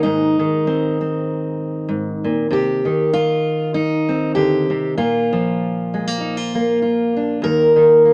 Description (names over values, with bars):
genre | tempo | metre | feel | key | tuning
folk, solo fingerstyle acoustic guitar | 98 BPM | 4/4 | swing 56% on 8ths | unclear | A4 = 440 Hz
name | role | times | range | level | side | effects
fingerpicked steel-string acoustic guitar | solo | 0.0-8.1 s | Eb2 to Bb4 | -18 LUFS | equal | none
room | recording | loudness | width
moderate club reverb, RT60 0.5 s | none | -18 LUFS | mono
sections
0.0-8.1 A section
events
none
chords
0.0 Ab; 2.5 Cm; 5.0 Bb5; 7.4 Eb5